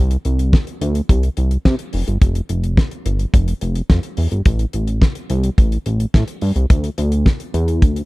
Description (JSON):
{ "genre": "early-eighties boogie funk", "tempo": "107 BPM", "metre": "4/4", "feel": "straight", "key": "A minor", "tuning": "A4 = 439 Hz", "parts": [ { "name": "chorused synth bass", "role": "bass", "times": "0.0-8.0 s", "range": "F1 to C3", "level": "-17 LUFS", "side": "equal", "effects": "none" }, { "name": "damped 70s drum kit", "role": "drums", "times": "0.1-8.1 s", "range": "hi-hat, kick drum, snare drum", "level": "-15 LUFS", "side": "equal", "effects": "none" } ], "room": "little or no reverb", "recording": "dark, warm production", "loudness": "-15 LUFS", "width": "side -21 dB against mid", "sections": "0.0-8.1 A section", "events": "none", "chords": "none" }